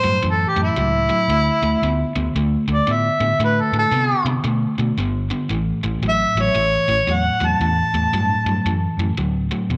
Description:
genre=electric blues shuffle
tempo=114 BPM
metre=4/4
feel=swing 63% on 8ths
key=A mixolydian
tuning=A4 = 439 Hz
part: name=mellow harmonica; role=melody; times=0.0-9.0 s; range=E4 to A5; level=-22 LUFS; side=equal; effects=slapback echo
part: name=cranked stack guitar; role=riff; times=0.0-9.8 s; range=E2 to B3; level=-25 LUFS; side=equal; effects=overdrive
part: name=vintage muted fingered electric bass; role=bass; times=0.0-9.8 s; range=E1 to C3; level=-25 LUFS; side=equal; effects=transformer saturation
room=wet spring reverb, RT60 1.9 s, small room reverb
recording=none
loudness=-19 LUFS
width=mono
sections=0.0-9.8 A section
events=none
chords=0.0 A; 1.3 Dsus2; 5.5 A5

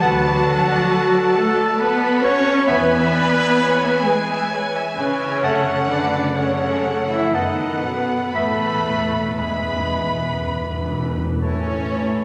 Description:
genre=classical, slow romantic movement for symphony orchestra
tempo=57-68 BPM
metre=3/4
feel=rubato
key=unclear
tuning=A4 = 440 Hz
part: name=warm studio violin section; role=melody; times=0.0-12.2 s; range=C#4 to B5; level=-28 LUFS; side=equal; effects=none
part: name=clear clarinet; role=second line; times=0.0-12.2 s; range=E4 to F#5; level=-32 LUFS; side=equal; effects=none
part: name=clear oboe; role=second line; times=0.0-12.2 s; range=G#5 to B5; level=-33 LUFS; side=equal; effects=none
part: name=concert flute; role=second line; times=0.0-12.2 s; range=A4 to C#6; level=-30 LUFS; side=equal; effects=none
part: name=warm studio violin section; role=second line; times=0.0-12.2 s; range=G#4 to C#6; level=-32 LUFS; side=equal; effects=none
part: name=rich studio viola section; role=accompaniment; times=0.0-12.2 s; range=E3 to F#5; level=-31 LUFS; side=equal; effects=none
part: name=warm bassoon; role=accompaniment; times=0.0-12.2 s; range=E3 to B3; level=-33 LUFS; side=equal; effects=none
part: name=dark French horn section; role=sustained chords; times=0.0-12.2 s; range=G#3 to C#5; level=-26 LUFS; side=equal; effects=none
part: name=concert harp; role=arpeggios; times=0.0-12.2 s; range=E2 to C#5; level=-33 LUFS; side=equal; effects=none
part: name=mellow trumpet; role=stabs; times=0.0-10.4 s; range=G#3 to C#5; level=-28 LUFS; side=equal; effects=none
part: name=rich studio cello section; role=bass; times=0.0-12.2 s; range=G#2 to C#4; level=-26 LUFS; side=equal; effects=none
part: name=rich studio double bass section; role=bass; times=0.0-12.2 s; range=A1 to F#2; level=-32 LUFS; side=equal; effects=none
part: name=timpani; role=percussion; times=2.7-4.0, 8.4-11.4 s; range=E2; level=-30 LUFS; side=equal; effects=none
room=wet recital hall reverb, RT60 1.8 s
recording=none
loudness=-19 LUFS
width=mono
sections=0.0-11.4 A section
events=timpani fill 8.3-11.4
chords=0.0 Bm7/D; 2.7 E; 5.4 F#m; 7.3 B7/F#; 8.3 E; 11.4 A

